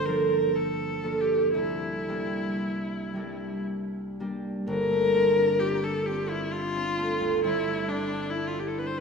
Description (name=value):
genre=classical, impressionist duo for viola and harp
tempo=56-69 BPM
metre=3/4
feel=rubato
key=G dorian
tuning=A4 = 441 Hz
part: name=rich viola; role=melody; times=0.0-9.0 s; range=D4 to C5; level=-28 LUFS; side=left 4 dB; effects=none
part: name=concert harp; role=accompaniment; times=0.0-9.0 s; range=G1 to A4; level=-27 LUFS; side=right 2 dB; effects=none
room=wet concert hall reverb, RT60 2.5 s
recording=none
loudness=-25 LUFS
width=side -5 dB against mid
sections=0.0-4.7 A section; 4.7-9.0 B section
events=none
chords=0.0 Gm9; 1.5 C9; 4.7 Gm11; 7.4 Am7/G